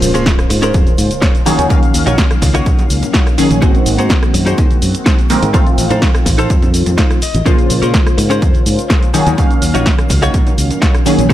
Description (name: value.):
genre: filtered disco house.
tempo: 125 BPM.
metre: 4/4.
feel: straight.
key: unclear.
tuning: A4 = 445 Hz.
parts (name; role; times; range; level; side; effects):
funky polysynth comp; accompaniment; 0.0-11.3 s; Db3 to F5; -16 LUFS; equal; chorus, phaser, sidechain pumping.
direct-recorded clean electric guitar; riff; 0.0-11.3 s; Db4 to F5; -20 LUFS; left 1 dB; analog chorus, sidechain pumping.
modern bright fingered electric bass; bass; 0.0-11.3 s; Ab1 to Bb2; -16 LUFS; equal; sidechain pumping.
punchy analog drum machine; drums; 0.0-11.3 s; cabasa, hi-hat, rim click, snare drum; -19 LUFS; equal; sidechain pumping on hats, studio reverb, sidechain pumping on perc, sidechain pumping on cymbals.
tube shaker and congas; percussion; 0.0-11.3 s; none; -25 LUFS; right 1 dB; none.
impact; sound effects; 0.0-1.7 s; none; -26 LUFS; equal; none.
electronic kick drum; drums; 0.3-11.3 s; none; -13 LUFS; equal; studio reverb.
room: light reverb, digital ambience.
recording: none.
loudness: -10 LUFS.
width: side -13 dB against mid.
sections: 0.0-11.3 A section.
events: impact 0.0-1.7; clean electric guitar fill 6.7-7.5.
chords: 0.0 Bbm9; 1.5 Ebm9; 3.6 Ab7; 5.5 F7/A; 7.5 Bbm9; 9.1 Ebm9.